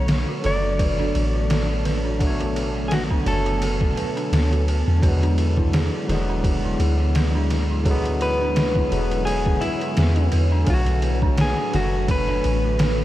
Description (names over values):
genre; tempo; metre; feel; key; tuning
trip hop; 85 BPM; 4/4; swing 56% on 16ths; B dorian; A4 = 440 Hz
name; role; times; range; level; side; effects
clean electric guitar; melody; 0.0-13.0 s; E4 to D5; -27 LUFS; left 1 dB; dub echo
barky tine electric piano; accompaniment; 0.0-13.0 s; D3 to D5; -28 LUFS; equal; harmonic tremolo, tape echo
string machine, cellos; sustained chords; 0.0-13.0 s; D3 to A5; -31 LUFS; equal; ensemble chorus, vintage 12-bit sampler grit
dark detuned synth bell; arpeggios; 0.0-13.0 s; D4 to B4; -31 LUFS; right 2 dB; chorus, phaser, tape echo
soft 808-style bass; bass; 0.0-13.0 s; E1 to E2; -22 LUFS; equal; none
trip hop sampler-style drum kit; drums; 0.1-13.0 s; kick drum, ride cymbal, snare drum; -24 LUFS; equal; overdrive
room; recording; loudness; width
moderate huge ambient reverb, RT60 8.3 s; dreamy mix soaked in reverb, vinyl crackle; -18 LUFS; side -14 dB against mid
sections
0.0-13.0 A section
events
none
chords
0.0 Bm7; 5.0 E7; 10.7 Bm7